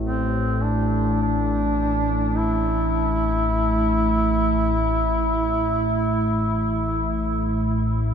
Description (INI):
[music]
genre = dark ambient drone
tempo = free time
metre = none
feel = none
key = unclear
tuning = A4 = 436 Hz
[part]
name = warm duduk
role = melody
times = 0.0-8.1 s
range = C4 to E4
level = -23 LUFS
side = right 1 dB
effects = ping-pong delay
[part]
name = analog drone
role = drone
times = 0.0-8.1 s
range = A1 to A2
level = -22 LUFS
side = equal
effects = chorus
[part]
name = bronze singing bowl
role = texture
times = 0.0-8.1 s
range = E4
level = -40 LUFS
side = left 4 dB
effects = none
[sound]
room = wet huge ambient reverb, RT60 7.5 s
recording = in a vast, echoing space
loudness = -20 LUFS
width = side -7 dB against mid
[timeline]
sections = 0.0-8.1 A section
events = none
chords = 0.0 A5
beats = free time